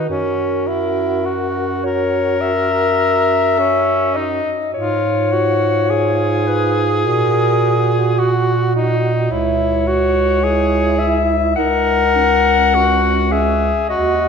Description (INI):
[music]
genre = classical, lyrical piece for single-reed quartet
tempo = 52 BPM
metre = 4/4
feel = rubato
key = unclear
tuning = A4 = 441 Hz
[part]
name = clear clarinet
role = melody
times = 0.0-14.3 s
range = A#4 to F#5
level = -18 LUFS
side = left 5 dB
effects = none
[part]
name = dark alto saxophone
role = second line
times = 0.0-14.3 s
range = C#4 to F#4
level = -22 LUFS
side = right 8 dB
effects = none
[part]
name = clear tenor saxophone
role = accompaniment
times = 0.0-14.3 s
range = C#4 to A#4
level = -19 LUFS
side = left 2 dB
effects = none
[part]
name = mellow bass clarinet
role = bass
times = 0.0-14.3 s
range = C#2 to A#2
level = -20 LUFS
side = right 2 dB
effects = none
[sound]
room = wet concert hall reverb, RT60 2.3 s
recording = minimal, uncompressed stereo recording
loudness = -14 LUFS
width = side -6 dB against mid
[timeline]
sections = 0.0-14.3 A section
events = none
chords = 0.1 F#; 4.7 C#add11/G#; 7.1 F#/A#; 9.3 C#m; 11.6 F#13/C#